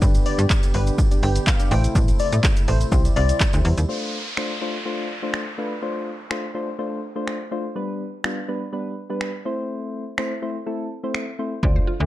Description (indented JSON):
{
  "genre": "dance-pop",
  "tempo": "124 BPM",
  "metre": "4/4",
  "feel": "straight",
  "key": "D dorian",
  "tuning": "A4 = 440 Hz",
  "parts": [
    { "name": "soft electric-piano-like synth keys", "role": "accompaniment", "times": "0.0-11.9 s", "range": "G3 to D5", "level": "-28 LUFS", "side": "left 1 dB", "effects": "chorus, sidechain pumping" },
    { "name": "pipe organ, principal", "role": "sustained chords", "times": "0.0-3.9 s", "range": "C3 to G4", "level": "-30 LUFS", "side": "right 2 dB", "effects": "sidechain pumping" },
    { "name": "slap-like FM bass", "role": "bass", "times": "0.0-3.9, 11.6-12.1 s", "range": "G1 to A2", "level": "-20 LUFS", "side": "equal", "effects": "sidechain pumping" },
    { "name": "punchy analog drum machine", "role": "drums", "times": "0.0-11.8 s", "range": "finger snaps, handclaps, hi-hat, kick drum, shaker", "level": "-20 LUFS", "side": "equal", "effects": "none" },
    { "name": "tube shaker", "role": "percussion", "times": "0.0-3.9 s", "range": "none", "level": "-42 LUFS", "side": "right 5 dB", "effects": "none" },
    { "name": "glassy wavetable pluck", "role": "melody", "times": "0.3-3.5 s", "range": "B4 to G5", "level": "-29 LUFS", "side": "left 4 dB", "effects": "chorus, sidechain pumping" },
    { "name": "downlifter", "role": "sound effects", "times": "3.9-7.8 s", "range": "none", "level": "-33 LUFS", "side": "equal", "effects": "none" },
    { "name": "mallet-like synth pluck", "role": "arpeggios", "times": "11.6-12.1 s", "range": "D4 to D5", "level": "-31 LUFS", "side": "right 3 dB", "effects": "chorus, phaser, sidechain pumping" }
  ],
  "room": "little or no reverb",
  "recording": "dark, warm production",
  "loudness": "-20 LUFS",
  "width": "side -15 dB against mid",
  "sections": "0.0-3.9 A section; 3.9-12.1 B section",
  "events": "drop 0.0-3.9",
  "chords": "0.0 G; 1.7 Am; 2.9 C; 3.9 Dm7; 7.8 G; 9.5 Am"
}